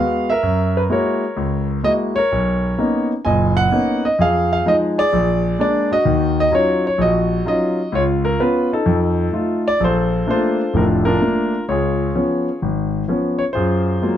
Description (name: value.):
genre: solo jazz.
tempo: 128 BPM.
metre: 4/4.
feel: swing 68% on 8ths.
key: F# major.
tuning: A4 = 440 Hz.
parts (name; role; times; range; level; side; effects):
warm concert grand piano; solo; 0.0-14.2 s; F1 to G#5; -16 LUFS; equal; none.
room: moderate club reverb, RT60 0.7 s.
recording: dark, warm production.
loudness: -16 LUFS.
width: side -10 dB against mid.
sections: 0.0-9.8 A section; 9.8-14.2 B section.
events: none.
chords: 0.4 F#9; 2.3 Bmaj9; 4.2 Fm7; 5.1 A#7; 6.1 D#m9; 7.9 C#7; 8.9 F7; 9.8 Bbmaj7; 11.7 Db7; 13.5 Gbmaj9.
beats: | 0.44 0.90 1.37 1.84 | 2.31 2.77 3.24 3.71 | 4.18 4.65 5.12 5.58 | 6.05 6.52 6.99 7.46 | 7.92 8.39 8.86 9.33 | 9.80 10.26 10.73 11.20 | 11.67 12.14 12.61 13.07 | 13.54 14.01.